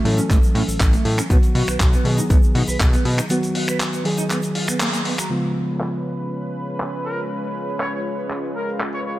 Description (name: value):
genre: nu-disco, nu disco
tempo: 120 BPM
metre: 4/4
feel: straight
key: Db mixolydian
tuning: A4 = 442 Hz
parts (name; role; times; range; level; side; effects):
- mellow reed electric piano; accompaniment; 0.0-9.2 s; Db3 to A4; -24 LUFS; equal; sidechain pumping, tape echo
- mellow electric guitar; riff; 0.0-5.3 s; Gb3 to Cb5; -28 LUFS; right 2 dB; wide subtle chorus, tape echo
- fat analog bass; bass; 0.0-3.2 s; A1 to Cb3; -20 LUFS; equal; tube saturation
- dusty soul sampler-style drum kit; drums; 0.1-9.0 s; cabasa, finger snaps, handclaps, hi-hat; -26 LUFS; equal; low-pass filter on hats, small room ambience, low-pass filter on perc, low-pass filter on snare
- tube shaker; percussion; 0.2-5.3 s; none; -39 LUFS; left 3 dB; none
- electronic kick drum; drums; 0.3-2.9 s; none; -16 LUFS; equal; small room ambience
- lush unison pad; sustained chords; 5.3-9.2 s; Ab3 to Cb5; -27 LUFS; equal; chorus, sidechain pumping
- mellow trumpet section; melody; 7.1-9.1 s; Bb4 to Db5; -30 LUFS; equal; tape echo
room: light reverb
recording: none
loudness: -18 LUFS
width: side -16 dB against mid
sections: 0.0-5.3 A section; 5.3-9.2 B section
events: break 3.3-5.3; band accent 4.8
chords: 0.0 A6; 1.3 Cb; 5.3 Db7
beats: 0.30 0.80 | 1.30 1.80 2.30 2.80 | 3.30 3.80 4.30 4.80 | 5.30 5.80 6.30 6.80 | 7.30 7.80 8.30 8.80